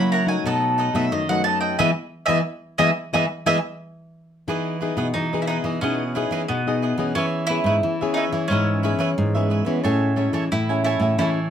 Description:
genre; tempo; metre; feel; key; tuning
samba; 89 BPM; 4/4; straight; E major; A4 = 439 Hz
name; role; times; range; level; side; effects
mandolin; melody; 0.0-11.3 s; B3 to B5; -23 LUFS; right 2 dB; none
cavaquinho; accompaniment; 0.0-11.5 s; D#4 to G#5; -27 LUFS; right 3 dB; none
nylon-string guitar; accompaniment; 0.0-11.5 s; F#2 to G#4; -26 LUFS; left 6 dB; none
nylon-string guitar; bass; 0.0-11.5 s; G#2 to F#3; -25 LUFS; right 1 dB; none
breathy trombone; second line; 9.2-10.3 s; G#3 to C#4; -25 LUFS; right 3 dB; none
room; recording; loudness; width
moderate studio reverb, RT60 0.6 s; minimal, uncompressed stereo recording; -19 LUFS; side -9 dB against mid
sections
0.0-4.5 A section; 4.5-11.5 B section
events
mandolin solo 0.0-4.5; band accent 1.8-4.5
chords
0.5 B7; 1.8 Emaj7; 7.2 C#m7; 9.8 Amaj7

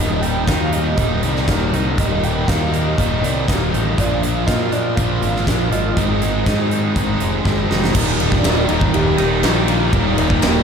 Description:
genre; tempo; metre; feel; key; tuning
rock, shoegaze and dream pop; 121 BPM; 4/4; straight; Eb major; A4 = 440 Hz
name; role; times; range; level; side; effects
warm velvety synth lead; melody; 0.0-10.6 s; Bb3 to G5; -25 LUFS; right 1 dB; chorus, ping-pong delay
twangy electric guitar; arpeggios; 0.0-10.6 s; Eb2 to F4; -28 LUFS; right 7 dB; lush chorus, ping-pong delay
biting overdriven guitar; riff; 0.0-10.6 s; Eb2 to F4; -23 LUFS; right 11 dB; reverse reverb
overdriven semi-hollow guitar; riff; 0.0-10.6 s; Eb2 to F4; -23 LUFS; left 9 dB; wide subtle chorus
fuzz fingered electric bass; bass; 0.0-10.6 s; Eb1 to Bb2; -21 LUFS; equal; overdrive
huge arena drum kit; drums; 0.2-10.5 s; crash cymbal, hi-hat, kick drum, ride cymbal, snare drum; -20 LUFS; equal; none
phased string machine; sustained chords; 7.9-10.6 s; Eb3 to G5; -26 LUFS; right 1 dB; ensemble chorus, phaser
room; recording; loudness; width
moderate plate reverb, RT60 1.7 s; dreamy mix soaked in reverb; -15 LUFS; side -6 dB against mid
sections
0.0-8.0 A section; 8.0-10.6 B section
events
drum fill 7.5-8.0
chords
0.0 Ebmaj7; 4.0 Bb7; 6.0 Ab6; 8.0 Ebmaj7

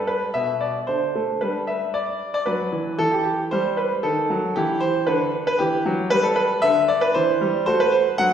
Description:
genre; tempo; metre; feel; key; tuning
classical-period piano sonatina; 115 BPM; 3/4; rubato; G major; A4 = 440 Hz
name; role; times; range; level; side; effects
clear concert grand piano; solo; 0.0-8.3 s; B2 to F#5; -19 LUFS; equal; none
room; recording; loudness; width
wet recital hall reverb, RT60 1.6 s; recorded in a church or concert hall; -19 LUFS; side -8 dB against mid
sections
0.0-8.3 A section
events
none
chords
0.0 G; 0.9 D5; 1.4 G; 3.0 Em; 4.0 D#dim; 4.6 Em; 6.1 G5; 7.2 C/E; 7.7 F#dim

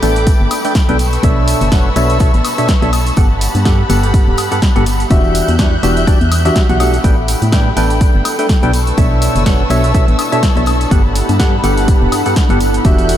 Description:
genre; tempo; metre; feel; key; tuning
piano house; 124 BPM; 4/4; swing 57% on 16ths; A mixolydian; A4 = 438 Hz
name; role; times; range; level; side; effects
warm studio string section; sustained chords; 0.0-13.2 s; G4 to G6; -22 LUFS; left 2 dB; sidechain pumping
percussive organ stab; riff; 0.0-13.2 s; G2 to G5; -16 LUFS; equal; wide subtle chorus, cassette tape, sidechain pumping, analog delay
organ-like FM bass; bass; 0.0-13.2 s; D1 to A2; -16 LUFS; equal; sidechain pumping
punchy analog drum machine; drums; 0.0-13.2 s; hi-hat, snare drum, woodblock; -22 LUFS; equal; overdrive
congas and tambourine; percussion; 0.0-13.2 s; none; -24 LUFS; left 5 dB; none
deep dark ambient pad; texture; 3.9-13.2 s; B3 to A4; -26 LUFS; right 2 dB; none
electronic kick drum; drums; 0.3-13.0 s; none; -12 LUFS; equal; overdrive
room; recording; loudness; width
light reverb, digital ambience; none; -10 LUFS; side -11 dB against mid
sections
0.0-13.2 A section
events
none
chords
0.0 A9sus4; 1.0 Bm11; 3.2 Gmaj9; 5.1 Em9; 7.0 A9sus4; 8.7 Bm11; 10.9 Gmaj9

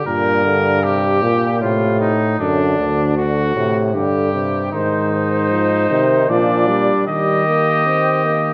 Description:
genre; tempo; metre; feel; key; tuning
classical, imitative canzona for brass ensemble; 77 BPM; 3/4; straight; G minor; A4 = 440 Hz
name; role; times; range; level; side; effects
clear trumpet; second line; 0.0-8.5 s; D4 to Bb4; -23 LUFS; equal; none
clear trombone; accompaniment; 0.0-8.5 s; Bb2 to C4; -23 LUFS; equal; none
clear bass trombone; bass; 0.1-8.5 s; D2 to Eb3; -21 LUFS; equal; none
warm trumpet; melody; 4.7-8.5 s; C5 to Eb5; -21 LUFS; equal; none
room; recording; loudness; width
wet scoring stage reverb, RT60 1.5 s; none; -17 LUFS; mono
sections
0.0-4.7 A section; 4.7-8.5 B section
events
none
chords
0.1 Gm; 1.6 Adim; 2.4 D; 3.9 G5; 4.7 Ab; 6.3 Bb; 7.1 Eb

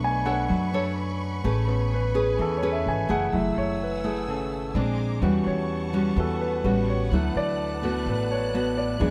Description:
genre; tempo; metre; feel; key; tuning
bossa nova; 127 BPM; 4/4; straight; A major; A4 = 440 Hz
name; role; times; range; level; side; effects
nylon-string guitar; accompaniment; 0.0-9.1 s; A2 to C#5; -30 LUFS; equal; none
warm grand piano; accompaniment; 0.0-9.1 s; F#3 to G#5; -30 LUFS; equal; none
dark studio string section; sustained chords; 0.0-9.1 s; D4 to F#6; -39 LUFS; equal; none
upright bass; bass; 0.0-9.1 s; F#1 to F#2; -31 LUFS; equal; none
room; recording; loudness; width
little or no reverb; close, detailed microphones; -25 LUFS; mono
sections
0.0-3.3 A section; 3.3-9.1 A section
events
grand piano solo 0.0-9.1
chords
0.0 Bm9; 1.4 Amaj9; 4.7 A#9; 5.2 A13/E; 6.6 A13; 7.1 D6

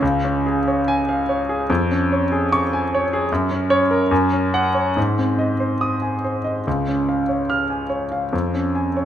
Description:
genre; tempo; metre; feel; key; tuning
classical, romantic character piece for solo piano; 72 BPM; 2/4; rubato; Db major; A4 = 442 Hz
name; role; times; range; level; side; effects
clear grand piano; solo; 0.0-9.1 s; Db2 to F6; -18 LUFS; equal; none
room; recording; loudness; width
moderate recital hall reverb, RT60 1.6 s; none; -18 LUFS; side -10 dB against mid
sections
0.0-9.1 A section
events
none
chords
0.0 Db; 1.7 Db/F; 3.3 Gb; 4.1 Gb5; 5.0 Ab; 6.7 Db; 8.3 Db/F

